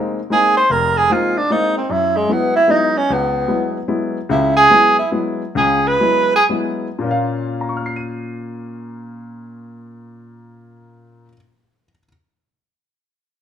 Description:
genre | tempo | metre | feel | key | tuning
jazz | 105-150 BPM | 3/4 | swing 67% on 8ths | unclear | A4 = 442 Hz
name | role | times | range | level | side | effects
warm baby grand piano | accompaniment | 0.0-12.1 s | F1 to Eb7 | -21 LUFS | left 3 dB | none
mellow tenor saxophone | melody | 0.3-6.4 s | Ab3 to C5 | -14 LUFS | right 2 dB | none
room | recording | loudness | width
moderate large studio reverb, RT60 1.1 s | minimal, uncompressed stereo recording | -14 LUFS | side -9 dB against mid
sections
0.0-7.0 A section; 7.0-10.4 B section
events
tenor saxophone solo 0.0-7.0; slowing down 4.3-7.0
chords
0.0 Bb9sus4; 1.9 Gb9sus4; 7.0 Bbm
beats
0.30 | 0.69 1.09 1.49 | 1.89 2.29 2.69 | 3.09 3.49 3.89 | 4.29 4.69 5.10 | 5.54 5.99 6.49 | 7.03 7.59 8.16 | 8.73 9.30 9.87

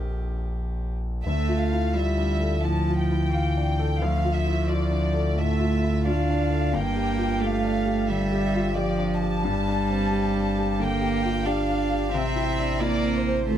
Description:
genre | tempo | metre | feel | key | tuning
neoclassical piano and strings | 88 BPM | 4/4 | rubato | D minor | A4 = 440 Hz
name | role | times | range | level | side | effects
clear cello | second line | 0.0-13.6 s | E3 to G4 | -27 LUFS | right 5 dB | none
warm concert grand piano | accompaniment | 0.0-13.6 s | Bb1 to F5 | -27 LUFS | left 3 dB | none
pure sine sub bass | bass | 0.0-13.6 s | G1 to D2 | -28 LUFS | equal | none
warm chamber violin section | melody | 1.2-13.6 s | C5 to A5 | -30 LUFS | left 1 dB | none
room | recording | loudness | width
light reverb | none | -22 LUFS | side -10 dB against mid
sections
0.0-1.3 A section; 1.3-13.6 B section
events
none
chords
0.0 Bb6; 1.3 Dmadd9; 6.7 Gm; 12.1 Am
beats
0.57 | 1.26 1.95 2.64 3.33 | 4.01 4.69 5.37 6.06 | 6.74 7.42 8.09 8.76 | 9.45 10.12 10.80 11.47 | 12.14 12.82 13.50

